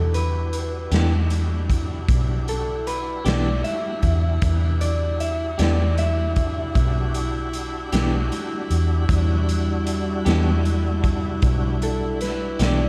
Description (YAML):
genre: slow blues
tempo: 51 BPM (dotted quarters)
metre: 12/8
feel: straight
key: E minor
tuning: A4 = 440 Hz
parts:
  - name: electric guitar through a small old amp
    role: second line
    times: 0.0-12.9 s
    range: A4 to E5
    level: -30 LUFS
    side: equal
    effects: slapback echo
  - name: tonewheel organ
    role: sustained chords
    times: 0.0-12.9 s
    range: G3 to B4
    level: -34 LUFS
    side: equal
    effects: overdrive, chorus vibrato, slow rotary speaker
  - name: warm saxophone section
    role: sustained chords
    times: 0.0-12.9 s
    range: G3 to E4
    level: -34 LUFS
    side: equal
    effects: none
  - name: vintage muted fingered electric bass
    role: bass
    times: 0.0-12.9 s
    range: B1 to E2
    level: -24 LUFS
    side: equal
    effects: none
  - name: raw garage drum kit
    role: drums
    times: 0.1-12.8 s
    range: hi-hat, kick drum, snare drum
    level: -28 LUFS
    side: equal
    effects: none
  - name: clean electric guitar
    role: accompaniment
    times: 0.9-12.8 s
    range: E3 to G4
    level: -27 LUFS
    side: equal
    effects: tremolo
room: light reverb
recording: none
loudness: -22 LUFS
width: mono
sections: 0.0-12.9 A section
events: clean electric guitar solo 0.0-12.9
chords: 0.0 Em7